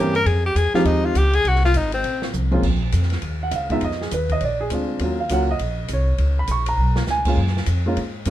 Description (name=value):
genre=jazz, small-group swing and bop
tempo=203 BPM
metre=4/4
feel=swing 61% on 8ths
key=Bb minor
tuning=A4 = 439 Hz
part: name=clear tenor saxophone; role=melody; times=0.0-2.3 s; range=C4 to Bb4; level=-20 LUFS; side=left 3 dB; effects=none
part: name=dark grand piano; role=accompaniment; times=0.0-8.3 s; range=E3 to Db6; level=-22 LUFS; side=right 2 dB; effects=none
part: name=upright bass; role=bass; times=0.0-8.3 s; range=Ab1 to Ab2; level=-21 LUFS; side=equal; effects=none
part: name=open jazz drum kit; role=drums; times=0.1-8.3 s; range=crash cymbal, hi-hat, kick drum, ride cymbal, snare drum, toms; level=-29 LUFS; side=equal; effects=none
room=light reverb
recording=minimal, uncompressed stereo recording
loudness=-18 LUFS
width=side -13 dB against mid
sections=0.0-2.6 A section; 2.6-8.3 A section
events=tenor saxophone solo 0.0-2.6; drum fill 2.3, 6.8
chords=0.3 Fm7; 1.5 Ab7; 2.0 F; 2.6 Bbm; 3.8 Abm6; 4.4 Bb7; 5.0 Ebm7; 6.2 Db7(no3); 7.4 Gbmaj7(no3)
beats=| 0.27 0.56 0.86 1.16 | 1.45 1.75 2.04 2.34 | 2.63 2.93 3.23 3.52 | 3.82 4.12 4.41 4.71 | 5.00 5.30 5.60 5.89 | 6.19 6.49 6.78 7.08 | 7.37 7.67 7.96 8.26